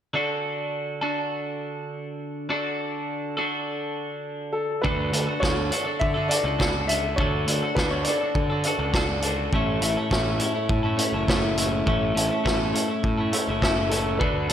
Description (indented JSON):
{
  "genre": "indie rock",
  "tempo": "102 BPM",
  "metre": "4/4",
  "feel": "straight",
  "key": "D major",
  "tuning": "A4 = 438 Hz",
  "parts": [
    { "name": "twelve-string electric guitar", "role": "riff", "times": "0.1-14.5 s", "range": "A2 to A4", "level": "-26 LUFS", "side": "equal", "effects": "spring reverb, slapback echo" },
    { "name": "clear upright piano", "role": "melody", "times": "4.5-9.2, 13.9-14.5 s", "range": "A4 to E5", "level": "-28 LUFS", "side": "left 1 dB", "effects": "slapback echo, tape echo" },
    { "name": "fuzz picked electric bass", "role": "bass", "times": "4.8-14.5 s", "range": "F#1 to D3", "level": "-28 LUFS", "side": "equal", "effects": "overdrive" },
    { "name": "vintage drum kit", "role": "drums", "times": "4.8-14.5 s", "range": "hi-hat, kick drum, snare drum", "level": "-26 LUFS", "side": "equal", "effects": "none" }
  ],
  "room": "moderate lush hall reverb, RT60 1.9 s, small room ambience",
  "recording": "big arena sound",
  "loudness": "-22 LUFS",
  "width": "side -9 dB against mid",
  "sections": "0.1-4.8 A section; 4.8-14.5 B section",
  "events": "none",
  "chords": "0.1 D; 9.5 A"
}